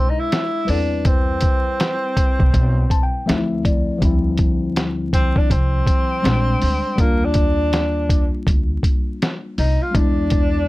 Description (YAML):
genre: hip hop, jazz-hop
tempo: 81 BPM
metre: 4/4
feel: swing 62% on 16ths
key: D dorian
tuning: A4 = 440 Hz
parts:
  - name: breathy tenor saxophone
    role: melody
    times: 0.0-10.7 s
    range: Bb3 to F4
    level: -22 LUFS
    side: equal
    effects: none
  - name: mellow tine electric piano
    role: accompaniment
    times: 0.0-10.7 s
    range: F3 to A5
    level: -24 LUFS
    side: left 2 dB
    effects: none
  - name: lo-fi sampler-style drum kit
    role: drums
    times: 0.3-10.5 s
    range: hi-hat, kick drum, snare drum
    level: -19 LUFS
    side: equal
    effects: none
  - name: upright bass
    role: bass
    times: 0.7-10.7 s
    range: Bb1 to E2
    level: -22 LUFS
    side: equal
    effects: none
room: little or no reverb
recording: vinyl crackle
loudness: -16 LUFS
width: side -19 dB against mid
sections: 0.0-4.0 A section; 4.0-10.7 B section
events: tine electric piano fill 2.5-4.0; tenor saxophone solo 4.0-10.7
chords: 0.0 E7; 0.7 Am9 (rootless); 3.3 Dm9; 4.0 Dm11; 6.2 Bb13; 7.0 Ebmaj9; 9.9 E7